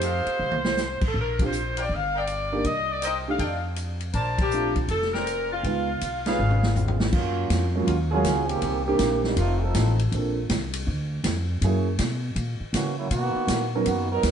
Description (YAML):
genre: jazz, big band swing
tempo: 160 BPM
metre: 4/4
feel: swing 66% on 8ths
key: Bb major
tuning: A4 = 444 Hz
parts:
  - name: mellow saxophone section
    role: melody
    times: 0.0-6.7 s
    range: F4 to F5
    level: -27 LUFS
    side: left 1 dB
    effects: none
  - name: clear trumpet section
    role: stabs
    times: 0.0-6.7 s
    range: G4 to A5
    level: -32 LUFS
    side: left 1 dB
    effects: none
  - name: upright bass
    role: bass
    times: 0.0-14.3 s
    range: F1 to C#3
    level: -27 LUFS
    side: equal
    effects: none
  - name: swinging big-band drum kit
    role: drums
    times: 0.0-14.3 s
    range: crash cymbal, hi-hat, kick drum, ride cymbal, snare drum, toms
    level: -29 LUFS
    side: equal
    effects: none
  - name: clear concert grand piano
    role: accompaniment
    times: 1.4-13.9 s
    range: Eb3 to A#4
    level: -28 LUFS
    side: right 3 dB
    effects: none
  - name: bright trombone section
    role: second line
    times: 6.7-10.0, 12.7-14.3 s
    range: D#3 to A#4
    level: -27 LUFS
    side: right 2 dB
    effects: none
room: light reverb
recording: heard from further back in the room, nothing above 10.5 kHz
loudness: -22 LUFS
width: side -8 dB against mid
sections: 0.0-7.1 A section; 7.1-14.3 B section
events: drum fill 0.4-0.8, 6.4-7.1; band accent 1.3, 4.3; trombone section solo 7.1-14.3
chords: 0.0 F9; 1.2 Bb69; 1.9 Gm7; 2.6 Cm7; 3.4 F13; 4.1 Bbmaj9; 5.6 Db7; 7.1 F#maj7; 8.6 Cm7; 9.4 F7; 10.1 A#maj7; 11.6 F#7; 13.1 Bmaj7